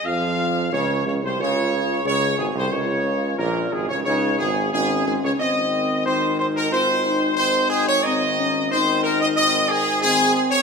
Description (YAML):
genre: classical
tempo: 90 BPM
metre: 4/4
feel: straight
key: unclear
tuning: A4 = 438 Hz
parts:
  - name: clear trumpet section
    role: melody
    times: 0.0-10.6 s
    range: Ab4 to F5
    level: -20 LUFS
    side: equal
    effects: none
  - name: clear tuba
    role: bass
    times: 0.0-10.5 s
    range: Ab1 to F2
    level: -26 LUFS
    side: right 3 dB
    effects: none
  - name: warm trombone section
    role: sustained chords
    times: 0.1-10.6 s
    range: Ab2 to Eb4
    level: -29 LUFS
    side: right 3 dB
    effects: none
  - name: mellow French horn section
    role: sustained chords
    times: 1.4-10.6 s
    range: C4 to Ab4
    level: -26 LUFS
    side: left 4 dB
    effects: none
room: wet concert hall reverb, RT60 2.0 s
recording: minimal, uncompressed stereo recording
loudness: -18 LUFS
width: side -5 dB against mid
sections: 0.0-10.6 A section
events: none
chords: 0.0 Db; 5.4 Ab